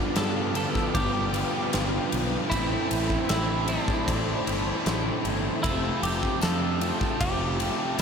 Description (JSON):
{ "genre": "rock, shoegaze and dream pop", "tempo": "77 BPM", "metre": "4/4", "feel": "straight", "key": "unclear", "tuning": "A4 = 440 Hz", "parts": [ { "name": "twelve-string electric guitar", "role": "melody", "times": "0.0-8.0 s", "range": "D4 to A4", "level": "-32 LUFS", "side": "equal", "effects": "tape echo" }, { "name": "ensemble organ-string", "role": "sustained chords", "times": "0.0-8.0 s", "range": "G4 to D6", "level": "-35 LUFS", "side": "equal", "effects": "ensemble chorus" }, { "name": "cranked stack guitar", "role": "riff", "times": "0.0-8.0 s", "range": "F2 to G4", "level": "-32 LUFS", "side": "right 7 dB", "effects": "overdrive, reverse reverb" }, { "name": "cranked stack guitar", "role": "riff", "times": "0.0-8.0 s", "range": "G2 to F4", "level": "-35 LUFS", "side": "equal", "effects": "overdrive, wide subtle chorus" }, { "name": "overdriven electric guitar", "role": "riff", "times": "0.0-8.0 s", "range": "G2 to F4", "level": "-33 LUFS", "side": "left 9 dB", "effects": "lush chorus" }, { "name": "fuzz fingered electric bass", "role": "bass", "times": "0.2-8.0 s", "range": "F1 to G2", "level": "-31 LUFS", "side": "equal", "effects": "overdrive" }, { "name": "huge arena drum kit", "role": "drums", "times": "0.2-8.0 s", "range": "kick drum, ride cymbal, snare drum", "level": "-30 LUFS", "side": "equal", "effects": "none" }, { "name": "tambourine", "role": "percussion", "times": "6.4-8.0 s", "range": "none", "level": "-41 LUFS", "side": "left 8 dB", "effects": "none" } ], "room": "wet lush hall reverb, RT60 2.8 s", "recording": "dreamy mix soaked in reverb", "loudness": "-24 LUFS", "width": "side -6 dB against mid", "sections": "0.0-8.0 A section", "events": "none", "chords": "0.0 G7; 2.5 Am9; 5.6 Fmaj9" }